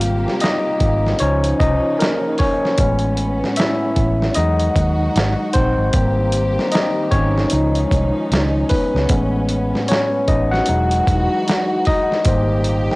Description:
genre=R&B, neo-soul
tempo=76 BPM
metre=4/4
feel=swing 59% on 16ths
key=unclear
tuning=A4 = 440 Hz
part: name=overdriven tine electric piano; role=accompaniment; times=0.0-13.0 s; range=F3 to Gb5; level=-18 LUFS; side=left 1 dB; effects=cassette tape
part: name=warm studio string section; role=sustained chords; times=0.0-13.0 s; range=A2 to G4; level=-25 LUFS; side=right 1 dB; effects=cassette tape
part: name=vintage muted fingered electric bass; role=bass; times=0.0-12.9 s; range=E1 to E2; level=-19 LUFS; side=equal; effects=none
part: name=dusty soul sampler-style drum kit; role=drums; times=0.0-13.0 s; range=hi-hat, kick drum, snare drum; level=-20 LUFS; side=equal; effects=overdrive, cassette tape
room=little or no reverb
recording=home recording on cassette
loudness=-15 LUFS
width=side -22 dB against mid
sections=0.0-13.0 A section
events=tine electric piano solo 0.0-13.0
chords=0.0 Abmaj9; 1.2 Dbmaj9; 2.8 Amaj9; 4.4 Emaj9; 5.9 Abmaj9; 7.5 Dbadd9; 9.1 Amaj9; 10.7 Emaj9; 12.3 Abmaj9

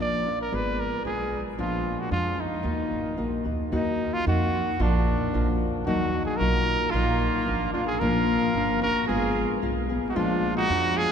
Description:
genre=mexican folk, mariachi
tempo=112 BPM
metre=2/4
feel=straight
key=Eb harmonic minor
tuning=A4 = 441 Hz
part: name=breathy trumpet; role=melody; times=0.0-11.1 s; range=D4 to D5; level=-27 LUFS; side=right 1 dB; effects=none
part: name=nylon-string guitar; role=accompaniment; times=0.0-11.1 s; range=Bb2 to Ab4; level=-27 LUFS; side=left 3 dB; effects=none
part: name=upright bass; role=bass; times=0.0-11.0 s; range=G1 to F2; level=-30 LUFS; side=right 1 dB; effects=none
part: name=clear trumpet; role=second line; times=6.9-11.1 s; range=Bb3 to Gb4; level=-32 LUFS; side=right 6 dB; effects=none
room=wet cathedral reverb, RT60 6.5 s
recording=recorded in a church or concert hall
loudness=-23 LUFS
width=side -7 dB against mid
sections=0.0-3.7 A section; 3.7-11.1 A section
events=none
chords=0.0 Bb; 0.5 Fdim/Ab; 1.6 Bb7; 2.6 Ebm; 4.8 Bb; 5.9 Ebmadd9; 6.9 Bbsus4; 7.5 Bb; 9.1 Fdim/Ab; 10.2 Bb7

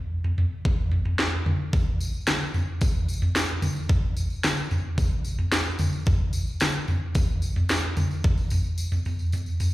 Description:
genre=folk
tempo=111 BPM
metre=4/4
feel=straight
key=none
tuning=none
part: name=drum and bass drum kit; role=drums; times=0.2-9.7 s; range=kick drum, snare drum, toms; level=-23 LUFS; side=equal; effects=overdrive
part: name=tambourine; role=percussion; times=1.7-9.7 s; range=none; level=-39 LUFS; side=left 2 dB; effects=none
room=light reverb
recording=live gig heard through the venue's PA, recital hall reverb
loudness=-23 LUFS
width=side -17 dB against mid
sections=0.0-9.7 A section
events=kick and snare drop out 9.3-9.7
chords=none

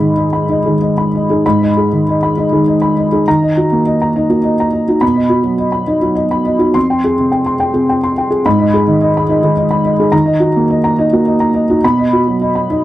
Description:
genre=neoclassical minimalist piano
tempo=94-110 BPM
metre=3/4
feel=rubato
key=G# minor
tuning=A4 = 440 Hz
part: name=felt-muted upright piano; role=solo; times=0.0-12.8 s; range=F2 to C6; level=-11 LUFS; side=equal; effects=none
room=light reverb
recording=dry, close 1970s-style studio recording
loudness=-11 LUFS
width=side -14 dB against mid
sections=0.0-1.4 A section; 1.4-12.8 A section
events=none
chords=0.0 G#m; 3.3 D#m; 5.0 B; 6.8 Fmadd9; 8.5 G#m; 10.1 D#m; 11.8 B

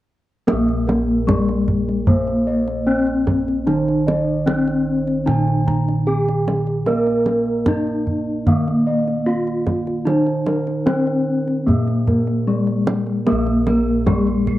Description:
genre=Javanese gamelan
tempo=75 BPM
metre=4/4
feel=straight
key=Bb slendro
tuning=A4 = 439 Hz
part: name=gamelan-type bronze metallophone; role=melody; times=0.5-14.6 s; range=Ab3-45c to Bb4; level=-20 LUFS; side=left 2 dB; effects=cassette tape
part: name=gamelan-type bronze metallophone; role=accompaniment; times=0.5-14.6 s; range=Eb3-35c to Bb3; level=-23 LUFS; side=right 4 dB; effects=cassette tape
part: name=gamelan-type bossed gongs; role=arpeggios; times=0.5-14.5 s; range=Ab4-45c to Bb5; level=-26 LUFS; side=left 1 dB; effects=cassette tape
part: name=gamelan-type bossed gongs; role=bass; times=0.5-14.6 s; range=Bb1 to Bb4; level=-24 LUFS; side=equal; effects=none
part: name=kendang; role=percussion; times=0.5-14.6 s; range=none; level=-21 LUFS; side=right 1 dB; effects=none
part: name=gamelan-type bronze metallophone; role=arpeggios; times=13.3-14.6 s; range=Ab4-45c to Bb4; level=-32 LUFS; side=right 3 dB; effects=cassette tape
room=moderate spring reverb, RT60 1.2 s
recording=home recording on cassette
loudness=-16 LUFS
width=side -15 dB against mid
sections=0.5-13.3 A section; 13.3-14.6 A section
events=none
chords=none

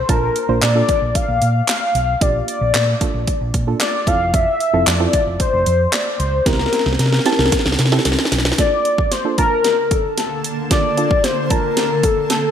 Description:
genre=dance-pop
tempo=113 BPM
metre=4/4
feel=straight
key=unclear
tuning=A4 = 439 Hz
part: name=warm velvety synth lead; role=melody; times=0.0-12.5 s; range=A4 to F5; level=-18 LUFS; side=left 2 dB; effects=chorus, digital delay
part: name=soft round pluck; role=accompaniment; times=0.1-12.3 s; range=Bb3 to A5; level=-24 LUFS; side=right 6 dB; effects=chorus, sidechain pumping
part: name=fingered electric bass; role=bass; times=0.1-8.5 s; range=F1 to C3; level=-19 LUFS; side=equal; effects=sidechain pumping
part: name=house drum kit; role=drums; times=0.1-12.4 s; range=handclaps, hi-hat, kick drum, snare drum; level=-19 LUFS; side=equal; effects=none
part: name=granular cloud pad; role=sustained chords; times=9.7-12.5 s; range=D3 to A5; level=-25 LUFS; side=equal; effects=built-in reverb, lush chorus, sidechain pumping
room=moderate lush hall reverb, RT60 1.8 s, digital ambience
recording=bright 1980s-style digital production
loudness=-14 LUFS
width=side -8 dB against mid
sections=0.0-8.6 A section; 8.6-12.5 B section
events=drum fill 6.5-8.6, 8.6-12.5; build-up 8.6-12.5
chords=0.1 Bbmaj7; 4.1 Fmaj7; 6.5 C7; 8.6 Bbmaj7

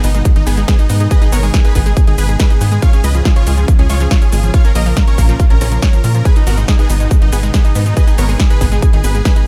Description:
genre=uplifting trance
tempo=140 BPM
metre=4/4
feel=straight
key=G# dorian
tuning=A4 = 436 Hz
part: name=big supersaw lead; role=melody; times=0.0-9.4 s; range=B3 to E#5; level=-25 LUFS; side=equal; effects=sidechain pumping, digital delay
part: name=analog string pad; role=sustained chords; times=0.0-9.5 s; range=G#2 to E#4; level=-27 LUFS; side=equal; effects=ensemble chorus, sidechain pumping
part: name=analog pluck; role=arpeggios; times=0.0-9.4 s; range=E#3 to C#5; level=-26 LUFS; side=equal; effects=chorus, sidechain pumping, digital delay
part: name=tight sequencer bass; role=bass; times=0.0-9.2 s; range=G#1 to A#2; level=-16 LUFS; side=equal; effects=sidechain pumping
part: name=big-room dance drum kit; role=drums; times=0.0-9.4 s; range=hi-hat, shaker, snare drum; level=-25 LUFS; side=equal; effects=studio reverb
part: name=electronic kick drum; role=drums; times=0.3-9.3 s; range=none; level=-13 LUFS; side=equal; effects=studio reverb
room=little or no reverb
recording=none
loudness=-12 LUFS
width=mono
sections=0.0-9.5 A section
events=none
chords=0.0 G#m; 2.8 C#; 4.5 A#m; 6.3 G#m

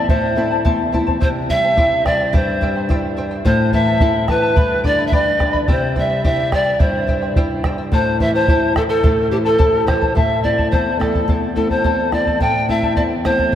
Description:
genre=andean folk, Andean ensemble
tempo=107 BPM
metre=2/4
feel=straight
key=A minor pentatonic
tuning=A4 = 443 Hz
part: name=breathy bright pan flute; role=melody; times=0.0-13.6 s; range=G4 to G5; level=-18 LUFS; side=right 1 dB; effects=none
part: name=charango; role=accompaniment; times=0.0-13.6 s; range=E4 to B5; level=-24 LUFS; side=left 4 dB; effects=none
part: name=nylon-string guitar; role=accompaniment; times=0.0-13.6 s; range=E2 to E4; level=-21 LUFS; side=left 2 dB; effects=none
part: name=bombo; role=percussion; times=0.1-13.6 s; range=none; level=-20 LUFS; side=equal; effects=none
room=wet cathedral reverb, RT60 5.9 s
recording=in a vast, echoing space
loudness=-14 LUFS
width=side -10 dB against mid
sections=0.0-1.2 A section; 1.2-10.2 A section; 10.2-13.6 B section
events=none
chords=0.0 Am; 1.2 C; 3.5 Am; 4.6 G; 5.7 C; 7.9 Am

